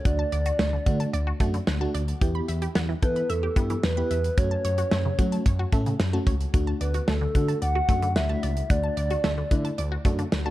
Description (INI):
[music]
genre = synth-pop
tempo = 111 BPM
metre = 4/4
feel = straight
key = D major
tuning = A4 = 439 Hz
[part]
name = hollow clarinet-like synth lead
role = melody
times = 0.0-10.3 s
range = A4 to F#5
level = -29 LUFS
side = equal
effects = chorus
[part]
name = FM electric piano with tremolo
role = accompaniment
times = 0.1-10.5 s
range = A3 to A4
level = -32 LUFS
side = left 1 dB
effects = phaser
[part]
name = resonant blip pluck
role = arpeggios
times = 0.1-10.5 s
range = C#3 to G6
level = -35 LUFS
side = equal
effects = phaser, analog delay
[part]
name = smooth gliding synth bass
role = bass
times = 0.1-10.5 s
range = C#2 to F#3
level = -27 LUFS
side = equal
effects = none
[part]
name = modern studio drum kit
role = drums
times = 0.1-10.4 s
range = hi-hat, kick drum, snare drum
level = -26 LUFS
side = equal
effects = none
[sound]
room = light reverb, small room ambience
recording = dark, warm production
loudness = -22 LUFS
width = side -15 dB against mid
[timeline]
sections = 0.0-10.5 A section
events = none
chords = 0.0 D; 2.2 Em; 4.4 F#m; 6.5 D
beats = | 0.05 0.59 1.13 1.67 | 2.21 2.75 3.30 3.84 | 4.38 4.92 5.46 6.00 | 6.54 7.08 7.62 8.16 | 8.70 9.24 9.78 10.32